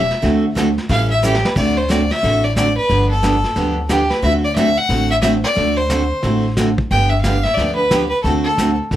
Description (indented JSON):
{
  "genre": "country, western swing",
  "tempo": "180 BPM",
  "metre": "4/4",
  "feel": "swing 63% on 8ths",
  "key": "D mixolydian",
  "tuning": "A4 = 439 Hz",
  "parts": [
    { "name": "clear fiddle", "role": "melody", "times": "0.0-8.8 s", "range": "G4 to G5", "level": "-18 LUFS", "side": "left 1 dB", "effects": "none" },
    { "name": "upright bass", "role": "bass", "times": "0.0-9.0 s", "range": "G1 to D2", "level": "-20 LUFS", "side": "equal", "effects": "none" },
    { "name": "vintage brush drum kit", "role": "drums", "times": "0.1-9.0 s", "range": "brushed snare drum, crash cymbal, hi-hat, kick drum, snare drum", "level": "-24 LUFS", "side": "equal", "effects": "none" },
    { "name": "picked steel-string acoustic guitar", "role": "accompaniment", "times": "0.2-9.0 s", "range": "D3 to A4", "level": "-19 LUFS", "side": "right 2 dB", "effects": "none" }
  ],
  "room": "light reverb",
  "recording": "none",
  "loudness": "-14 LUFS",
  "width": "side -12 dB against mid",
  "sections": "0.0-1.6 A section; 1.6-9.0 B section",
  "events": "fiddle solo 0.0-1.6; drum fill 1.2-1.6",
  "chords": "0.2 D7; 0.9 A7; 1.6 D9; 2.9 G9; 4.2 D7; 6.9 G7; 8.2 D7"
}